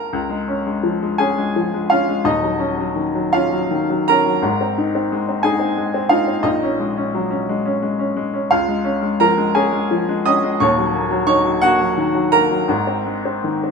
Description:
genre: neoclassical minimalist piano.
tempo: 52-60 BPM (dotted quarters).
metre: 6/8.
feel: rubato.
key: Db major.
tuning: A4 = 439 Hz.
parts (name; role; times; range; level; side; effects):
bright upright piano; solo; 0.0-13.7 s; Eb1 to Eb6; -16 LUFS; equal; none.
room: light reverb.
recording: minimal, uncompressed stereo recording.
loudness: -16 LUFS.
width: side -5 dB against mid.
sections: 0.1-13.7 A section.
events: none.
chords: 0.1 Db; 2.2 Ebm7; 4.4 Ab; 6.5 Gbadd9/Bb; 8.5 Db; 10.6 Ebm7; 12.7 Ab.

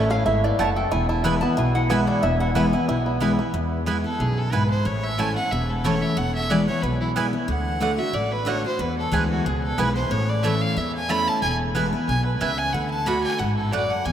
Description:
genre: bluegrass.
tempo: 183 BPM.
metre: 4/4.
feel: swing 54% on 8ths.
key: E mixolydian.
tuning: A4 = 437 Hz.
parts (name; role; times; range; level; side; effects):
bluegrass banjo; melody; 0.0-3.5 s; E3 to A4; -28 LUFS; right 1 dB; slapback echo.
lap resonator guitar; second line; 0.0-3.4 s; D5 to B5; -28 LUFS; equal; none.
picked steel-string acoustic guitar; accompaniment; 0.0-14.1 s; E2 to F#4; -25 LUFS; left 1 dB; none.
mandolin; stabs; 0.0-13.8 s; A3 to A5; -29 LUFS; right 4 dB; none.
upright bass; bass; 0.0-14.1 s; E1 to E2; -27 LUFS; equal; none.
clear fiddle; melody; 4.0-14.1 s; E4 to B5; -26 LUFS; equal; none.
room: wet cathedral reverb, RT60 6.1 s.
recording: in a vast, echoing space.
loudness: -20 LUFS.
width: side -9 dB against mid.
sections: 0.0-3.5 A section; 3.5-14.1 A section.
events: resonator guitar played with a steel bar solo 0.0-3.5; fiddle solo 3.5-14.1.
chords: 0.0 A; 0.9 E; 4.9 A; 6.2 E; 7.5 D; 8.8 E; 10.1 A; 11.4 E; 12.7 D.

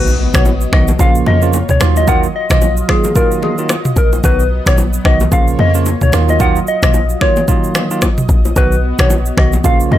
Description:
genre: afrobeats.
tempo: 111 BPM.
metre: 4/4.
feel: swing 58% on 16ths.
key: Eb minor.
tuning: A4 = 444 Hz.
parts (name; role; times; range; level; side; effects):
soft struck synth lead; melody; 0.0-10.0 s; Ab4 to Gb5; -18 LUFS; left 2 dB; chorus, ping-pong delay.
bell-like tine electric piano; accompaniment; 0.0-10.0 s; Db3 to F#4; -18 LUFS; moving between right 1 dB and right 12 dB; auto-pan.
warm analog pad; sustained chords; 0.0-10.0 s; Gb3 to D#5; -24 LUFS; left 1 dB; chorus, sidechain pumping.
deep log drum bass; bass; 0.0-10.0 s; Bb1 to F2; -14 LUFS; equal; none.
impact; sound effects; 0.0-2.1 s; none; -24 LUFS; left 1 dB; none.
afro-pop drum kit; drums; 0.1-9.9 s; finger snaps, kick drum, rim click, shaker, toms; -15 LUFS; equal; none.
bongos and congas; percussion; 0.5-10.0 s; none; -23 LUFS; left 3 dB; none.
room: little or no reverb.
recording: none.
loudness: -10 LUFS.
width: side -12 dB against mid.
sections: 0.0-10.0 A section.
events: impact 0.0-2.1.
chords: 0.0 B; 1.0 Bbm; 1.8 Ebmadd9; 4.2 B; 5.3 Bbm; 6.1 Ebmadd9; 8.6 B.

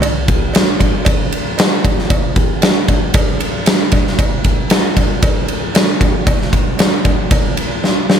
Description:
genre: rock.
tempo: 115 BPM.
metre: 4/4.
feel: straight.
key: none.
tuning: none.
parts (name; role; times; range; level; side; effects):
huge arena drum kit; drums; 0.0-8.2 s; kick drum, ride cymbal, snare drum; -12 LUFS; equal; none.
cowbell; percussion; 0.0-8.2 s; none; -26 LUFS; right 1 dB; slapback echo.
room: light reverb, small room ambience.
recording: none.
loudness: -12 LUFS.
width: side -8 dB against mid.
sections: 0.0-8.2 A section.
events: drum fill 7.8-8.2.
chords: none.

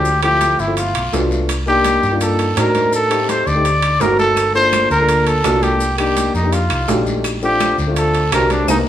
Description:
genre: Afro-Cuban jazz.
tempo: 167 BPM.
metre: 4/4.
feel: straight.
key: Bb major.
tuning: A4 = 440 Hz.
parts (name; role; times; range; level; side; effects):
mellow trumpet; melody; 0.0-8.8 s; D4 to D5; -16 LUFS; equal; none.
dark upright piano; accompaniment; 0.0-8.8 s; F3 to Bb4; -20 LUFS; left 3 dB; none.
hollow-body short-scale fingered electric bass; bass; 0.0-8.8 s; G1 to A2; -21 LUFS; equal; none.
maracas; percussion; 0.0-8.8 s; none; -32 LUFS; left 4 dB; none.
congas; percussion; 0.1-8.8 s; none; -30 LUFS; right 1 dB; none.
guiro; percussion; 0.1-8.8 s; none; -33 LUFS; left 3 dB; none.
timbales; percussion; 0.2-8.8 s; none; -23 LUFS; right 4 dB; none.
claves; percussion; 4.4-8.8 s; none; -32 LUFS; left 5 dB; none.
room: wet large studio reverb, RT60 1.3 s.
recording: band playing live in one room.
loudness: -13 LUFS.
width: side -11 dB against mid.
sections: 0.0-8.9 A section.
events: band accent 8.7.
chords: 0.1 Dm9; 0.8 G7; 1.5 Cm7; 2.9 Am7b5; 3.6 D7b9; 4.4 Gm7; 5.8 Cm9; 6.5 F13; 7.2 Bbmaj9.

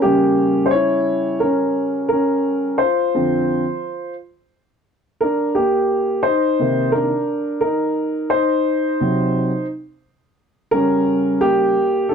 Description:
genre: hip hop.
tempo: 87 BPM.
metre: 4/4.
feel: swing 59% on 16ths.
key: unclear.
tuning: A4 = 440 Hz.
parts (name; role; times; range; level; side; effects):
dark upright piano; solo; 0.0-12.1 s; C3 to C#5; -16 LUFS; equal; none.
room: moderate studio reverb, RT60 0.6 s.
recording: none.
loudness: -16 LUFS.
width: side -6 dB against mid.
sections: 0.0-12.1 A section.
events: upright piano solo 0.0-12.1.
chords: 0.0 C#dim7; 2.8 Dm7; 5.6 Cm9; 8.0 Cm7b5; 10.7 C#dim7(no3).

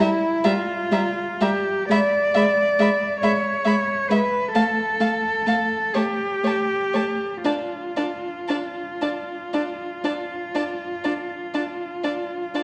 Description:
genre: classical, slow romantic movement for string quartet.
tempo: 38-47 BPM (dotted quarters).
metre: 12/8.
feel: rubato.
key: D minor.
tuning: A4 = 440 Hz.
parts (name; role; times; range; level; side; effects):
warm violin; melody; 0.0-12.6 s; A5 to B5; -35 LUFS; equal; none.
warm violin; second line; 0.0-12.6 s; C#5 to F5; -31 LUFS; equal; none.
warm viola; accompaniment; 0.0-12.6 s; G3 to D4; -28 LUFS; equal; none.
warm cello; bass; 0.0-12.6 s; E4 to D5; -26 LUFS; equal; none.
room: wet recital hall reverb, RT60 1.8 s.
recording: worn, warbling old tape, cassette tape, warbly pitch drift.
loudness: -23 LUFS.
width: mono.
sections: 0.0-12.6 A section.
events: none.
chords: 0.0 Em/G; 1.9 E7/G# (rootless); 4.5 N.C.; 7.4 Dm.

